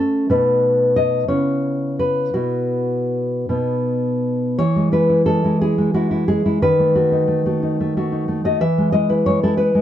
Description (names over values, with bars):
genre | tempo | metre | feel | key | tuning
romantic piece for solo classical guitar | 52-62 BPM (dotted quarters) | 6/8 | rubato | E major | A4 = 440 Hz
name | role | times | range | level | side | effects
nylon-string guitar | solo | 0.0-9.8 s | B2 to E5 | -16 LUFS | equal | none
room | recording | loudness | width
little or no reverb | dark, warm production | -16 LUFS | side -11 dB against mid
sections
0.0-4.6 A section; 4.6-9.8 B section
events
none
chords
0.3 B7; 1.3 C#m7; 2.4 Bsus4; 3.5 B; 4.6 E; 6.6 B7/D#; 8.6 E